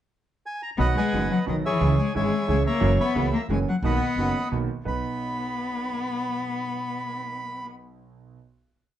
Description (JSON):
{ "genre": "tango", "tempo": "178 BPM", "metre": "3/4", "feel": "rubato", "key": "B major", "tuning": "A4 = 441 Hz", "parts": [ { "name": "bandoneon", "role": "melody", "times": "0.5-7.7 s", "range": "G#4 to B5", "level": "-29 LUFS", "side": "equal", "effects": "slapback echo" }, { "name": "warm cello", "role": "second line", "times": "0.8-7.7 s", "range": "D#3 to B3", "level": "-28 LUFS", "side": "left 4 dB", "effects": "none" }, { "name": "bright concert grand piano", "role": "accompaniment", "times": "0.8-8.4 s", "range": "F#1 to B4", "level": "-29 LUFS", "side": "right 4 dB", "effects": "none" }, { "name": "upright bass", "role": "bass", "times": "0.8-5.0 s", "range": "F#1 to C#2", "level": "-26 LUFS", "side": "right 1 dB", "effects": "none" } ], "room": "moderate studio reverb, RT60 0.6 s", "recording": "dark, warm production, nothing above 11.0 kHz", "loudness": "-23 LUFS", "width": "side -11 dB against mid", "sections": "0.0-0.8 pickup bar; 0.8-4.9 A section; 4.9-6.9 final chord", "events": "none", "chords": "0.0 N.C.; 0.8 B; 1.8 C#m; 2.8 F#7; 3.8 Bmaj7; 4.9 B", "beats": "0.12 0.46 | 0.80 1.14 1.48 | 1.82 2.16 2.49 | 2.83 3.16 3.50 | 3.83 4.17 4.52 | 4.86 5.20 5.54 | 5.87 6.21 6.55" }